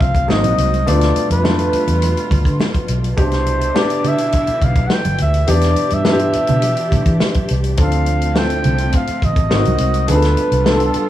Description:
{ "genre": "lush 1970s-style soul", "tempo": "104 BPM", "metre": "4/4", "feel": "straight", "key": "unclear", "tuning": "A4 = 441 Hz", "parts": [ { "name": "warm flugelhorn", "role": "melody", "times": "0.0-11.1 s", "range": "A4 to G5", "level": "-20 LUFS", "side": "equal", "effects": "none" }, { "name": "clear concert grand piano", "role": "accompaniment", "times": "0.0-11.1 s", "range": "B2 to A#4", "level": "-21 LUFS", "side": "left 1 dB", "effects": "none" }, { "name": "warm symphonic string section", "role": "sustained chords", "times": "0.0-11.1 s", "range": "B2 to G4", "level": "-26 LUFS", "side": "right 1 dB", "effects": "none" }, { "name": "vintage muted fingered electric bass", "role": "bass", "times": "0.0-11.0 s", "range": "G1 to E3", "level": "-17 LUFS", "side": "equal", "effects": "none" }, { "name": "warm soul drum kit", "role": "drums", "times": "0.0-11.1 s", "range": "hi-hat, kick drum, snare drum", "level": "-20 LUFS", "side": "equal", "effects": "none" }, { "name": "congas", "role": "percussion", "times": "0.0-10.8 s", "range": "none", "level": "-25 LUFS", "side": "right 4 dB", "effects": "none" } ], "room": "light reverb, studio reverb", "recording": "small room ambience", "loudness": "-13 LUFS", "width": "side -13 dB against mid", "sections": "0.0-11.1 A section", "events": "none", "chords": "0.3 G#9; 0.9 G9/D; 3.2 Cmaj9; 5.5 Em7; 7.8 Dm7; 9.5 G#9; 10.1 G9" }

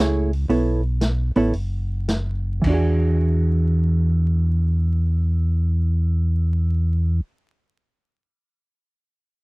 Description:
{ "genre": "soul jazz organ trio", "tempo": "105-120 BPM", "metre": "4/4", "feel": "swing 67% on 8ths", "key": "E mixolydian", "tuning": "A4 = 438 Hz", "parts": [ { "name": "hollow-body jazz guitar", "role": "accompaniment", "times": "0.0-7.3 s", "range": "E3 to C#5", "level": "-22 LUFS", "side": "right 2 dB", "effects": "none" }, { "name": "mellow tonewheel organ", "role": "bass", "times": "0.0-7.2 s", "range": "F#1 to E2", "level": "-19 LUFS", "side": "equal", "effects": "slow rotary speaker" }, { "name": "vintage drum kit", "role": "drums", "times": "0.3-2.8 s", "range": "crash cymbal, hi-hat, kick drum, snare drum", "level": "-26 LUFS", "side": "equal", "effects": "none" } ], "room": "little or no reverb", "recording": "dry, close 1970s-style studio recording, vinyl crackle", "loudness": "-18 LUFS", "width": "side -25 dB against mid", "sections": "0.0-2.6 A section; 2.6-7.2 B section", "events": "slowing down 0.0-2.6", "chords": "0.5 B9sus4; 2.6 E9" }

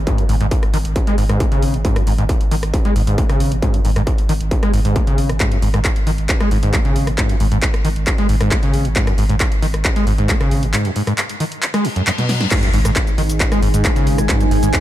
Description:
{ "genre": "driving peak-time techno", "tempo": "135 BPM", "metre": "4/4", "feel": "straight", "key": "G# minor", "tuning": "A4 = 440 Hz", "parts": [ { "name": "saturated sub bass", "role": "bass", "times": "0.0-14.7 s", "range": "G#1", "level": "-20 LUFS", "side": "equal", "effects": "tube saturation, sidechain pumping, low-pass filter" }, { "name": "overdriven acid bass", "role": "riff", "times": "0.1-14.7 s", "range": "F#2 to B3", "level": "-20 LUFS", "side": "equal", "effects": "distortion, wide subtle chorus, sidechain pumping, ping-pong delay" }, { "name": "electronic kick drum", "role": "drums", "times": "0.1-14.8 s", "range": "none", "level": "-18 LUFS", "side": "equal", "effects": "distortion" }, { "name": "punchy analog drum machine", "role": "drums", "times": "0.1-14.8 s", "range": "crash cymbal, handclaps, hi-hat, rim click, shaker, snare drum", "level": "-23 LUFS", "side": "equal", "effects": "overdrive, sidechain pumping on hats, sidechain pumping on cymbals, sidechain pumping on perc" }, { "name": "reverse cymbal and sub drop", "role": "sound effects", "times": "11.8-14.3 s", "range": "none", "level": "-27 LUFS", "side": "left 2 dB", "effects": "none" }, { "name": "analog drone", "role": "drone", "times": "12.7-14.8 s", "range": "G#2 to D#3", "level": "-24 LUFS", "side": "left 2 dB", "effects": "chorus, phaser, sidechain pumping" }, { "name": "granular cloud pad", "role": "texture", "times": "13.2-14.8 s", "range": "D#4 to G#5", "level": "-23 LUFS", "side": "right 3 dB", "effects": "built-in reverb, sidechain pumping" } ], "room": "little or no reverb", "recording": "dark, warm production", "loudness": "-14 LUFS", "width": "side -13 dB against mid", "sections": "0.0-12.5 A section; 12.5-14.8 B section", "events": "reverse cymbal 11.8-12.5; drum fill 12.2-12.5; band accent 12.4; drop 12.5-14.8; impact 12.5-14.3", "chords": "0.0 G#5" }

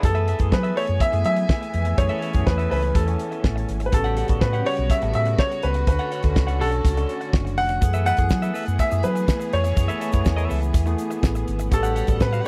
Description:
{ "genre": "disco", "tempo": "123 BPM", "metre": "4/4", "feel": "straight", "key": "F# minor", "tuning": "A4 = 440 Hz", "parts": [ { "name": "clear baby grand piano", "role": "melody", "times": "0.0-12.5 s", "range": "A4 to F#5", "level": "-27 LUFS", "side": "equal", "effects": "none" }, { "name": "barky tine electric piano", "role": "accompaniment", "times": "0.0-12.5 s", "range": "C#3 to A4", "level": "-34 LUFS", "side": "equal", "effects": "phaser" }, { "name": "clean electric guitar", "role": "accompaniment", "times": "0.0-12.5 s", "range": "G4 to F#5", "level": "-34 LUFS", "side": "equal", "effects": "none" }, { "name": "clear symphonic string section", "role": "sustained chords", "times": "0.0-12.5 s", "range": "C#3 to G#5", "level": "-34 LUFS", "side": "equal", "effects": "none" }, { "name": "fingered electric bass", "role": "bass", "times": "0.0-12.4 s", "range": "E#1 to F#3", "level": "-26 LUFS", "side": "equal", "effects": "none" }, { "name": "damped 70s drum kit", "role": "drums", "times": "0.0-12.5 s", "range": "hi-hat, kick drum, snare drum", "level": "-23 LUFS", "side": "equal", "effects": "none" }, { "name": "egg shaker", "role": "percussion", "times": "7.8-12.5 s", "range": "none", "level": "-49 LUFS", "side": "equal", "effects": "none" } ], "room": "little or no reverb", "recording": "dry, close 1970s-style studio recording", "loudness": "-22 LUFS", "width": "mono", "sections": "0.0-12.5 A section", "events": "none", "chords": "0.0 F#m11; 3.9 A13; 5.9 Dmaj7; 7.8 F#m11; 11.7 A13" }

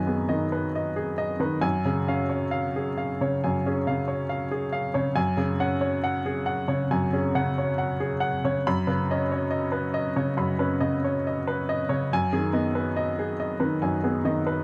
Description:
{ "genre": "neoclassical minimalist piano", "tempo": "69 BPM", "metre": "4/4", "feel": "rubato", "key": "unclear", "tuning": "A4 = 438 Hz", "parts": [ { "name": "clear upright piano", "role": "solo", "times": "0.0-14.6 s", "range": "F#2 to B5", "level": "-26 LUFS", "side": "equal", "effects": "none" } ], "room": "moderate booth ambience, RT60 0.2 s", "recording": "none", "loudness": "-26 LUFS", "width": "mono", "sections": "0.0-14.6 A section", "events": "none", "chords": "0.0 G#m/F#; 1.6 C#/F#; 5.2 F#sus2; 8.7 Badd9/F#; 12.1 G#m/F#" }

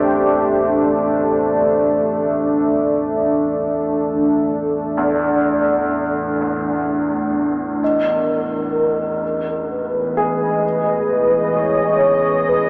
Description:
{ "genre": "dark ambient drone", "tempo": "free time", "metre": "none", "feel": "none", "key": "unclear", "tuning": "A4 = 439 Hz", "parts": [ { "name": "deep dark ambient pad", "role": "sustained chords", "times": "0.0-12.7 s", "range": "E3 to D#5", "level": "-17 LUFS", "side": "equal", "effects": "chorus, built-in reverb" }, { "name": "warm concert grand piano", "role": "arpeggios", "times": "0.0-12.7 s", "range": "E2 to G#4", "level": "-24 LUFS", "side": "equal", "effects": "lush chorus, tape echo" }, { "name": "analog drone", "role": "drone", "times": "0.0-12.7 s", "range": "A1 to E2", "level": "-29 LUFS", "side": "equal", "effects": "chorus" }, { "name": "mellow horn-like synth lead", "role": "melody", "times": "7.8-12.7 s", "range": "Bb4 to C#5", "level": "-19 LUFS", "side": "equal", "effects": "ensemble chorus, tape echo" }, { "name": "quartz singing bowl", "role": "texture", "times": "7.8-12.7 s", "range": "D#5", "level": "-24 LUFS", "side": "equal", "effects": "none" } ], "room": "wet cathedral reverb, RT60 6.0 s", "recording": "dreamy mix soaked in reverb, small speaker sound", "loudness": "-15 LUFS", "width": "side -38 dB against mid", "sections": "0.0-12.7 A section", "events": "none", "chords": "0.0 Am7; 7.8 E6" }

